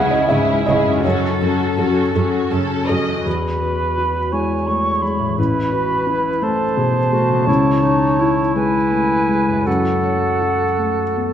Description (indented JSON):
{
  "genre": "cinematic, emotional film score for orchestra",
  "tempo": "56 BPM (dotted quarters)",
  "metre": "6/8",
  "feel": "uneven beats, rubato",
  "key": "E major",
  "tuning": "A4 = 439 Hz",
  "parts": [
    { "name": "muted studio violin section", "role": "melody", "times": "0.0-2.7 s", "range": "E4 to A4", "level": "-26 LUFS", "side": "left 3 dB", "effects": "none" },
    { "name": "muted studio violin section", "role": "second line", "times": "0.0-3.3 s", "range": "E4 to D#5", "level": "-26 LUFS", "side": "left 2 dB", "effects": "none" },
    { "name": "felt-muted upright piano", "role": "accompaniment", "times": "0.0-11.3 s", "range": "A1 to G#5", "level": "-20 LUFS", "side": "equal", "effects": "none" },
    { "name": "muted studio viola section", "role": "accompaniment", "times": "0.0-3.2 s", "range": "F#3 to C#4", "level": "-24 LUFS", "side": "equal", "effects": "none" },
    { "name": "concert harp", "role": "arpeggios", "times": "0.0-11.3 s", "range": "E2 to B5", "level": "-25 LUFS", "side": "left 6 dB", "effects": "none" },
    { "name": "muted studio cello section", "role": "bass", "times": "0.3-3.0 s", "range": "F#2 to C#3", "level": "-24 LUFS", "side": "right 3 dB", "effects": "none" },
    { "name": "silver concert flute", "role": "second line", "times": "3.2-11.2 s", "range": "F#5 to C#6", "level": "-22 LUFS", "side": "right 2 dB", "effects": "none" },
    { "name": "mellow cor anglais", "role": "second line", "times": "3.3-11.3 s", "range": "A4 to C#5", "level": "-22 LUFS", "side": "right 3 dB", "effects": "none" },
    { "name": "warm clarinet", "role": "second line", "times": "3.3-11.3 s", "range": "D#4 to A4", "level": "-23 LUFS", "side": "left 1 dB", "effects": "none" }
  ],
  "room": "wet scoring stage reverb, RT60 2.0 s",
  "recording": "none",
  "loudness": "-15 LUFS",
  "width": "side -9 dB against mid",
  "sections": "0.0-3.3 A section; 3.3-11.3 B section",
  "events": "none",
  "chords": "0.0 C#m; 1.0 F#m; 3.3 Eadd9; 5.4 Amadd9; 7.5 C#m; 9.7 F#m"
}